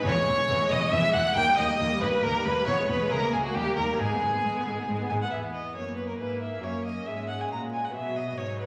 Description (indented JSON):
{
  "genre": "classical, baroque-style concerto movement with solo episodes",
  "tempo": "138 BPM",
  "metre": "3/4",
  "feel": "straight",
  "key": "unclear",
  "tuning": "A4 = 440 Hz",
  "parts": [
    { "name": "rich violin", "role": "melody", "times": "0.0-8.7 s", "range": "F#4 to A#5", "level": "-30 LUFS", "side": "equal", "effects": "none" },
    { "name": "lute", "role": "accompaniment", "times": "0.0-8.7 s", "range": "D#2 to A#4", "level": "-43 LUFS", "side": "equal", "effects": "none" },
    { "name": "rich studio viola section", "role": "accompaniment", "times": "0.0-8.7 s", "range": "E3 to B3", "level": "-36 LUFS", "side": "equal", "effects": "none" },
    { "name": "rich chamber violin section", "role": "melody", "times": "0.1-8.7 s", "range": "F#4 to G6", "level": "-40 LUFS", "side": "equal", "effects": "none" },
    { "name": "rich chamber violin section", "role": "second line", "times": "0.1-8.7 s", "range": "B3 to G5", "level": "-35 LUFS", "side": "equal", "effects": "none" },
    { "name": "dark chamber cello section", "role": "bass", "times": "0.1-8.7 s", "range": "C#2 to B2", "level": "-36 LUFS", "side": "equal", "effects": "none" },
    { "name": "dark chamber double bass section", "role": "bass", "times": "0.1-5.2 s", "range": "E1 to D#2", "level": "-39 LUFS", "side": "equal", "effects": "none" }
  ],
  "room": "wet recital hall reverb, RT60 1.5 s",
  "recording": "vinyl crackle",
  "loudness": "-27 LUFS",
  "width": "mono",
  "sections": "0.0-5.3 A section; 5.3-8.7 B section",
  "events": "none",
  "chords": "0.1 C#m/E; 1.4 D#; 2.7 E; 3.1 A#m7b5/C#; 3.5 D#; 4.0 G#m; 5.3 E; 6.6 F#; 7.9 B"
}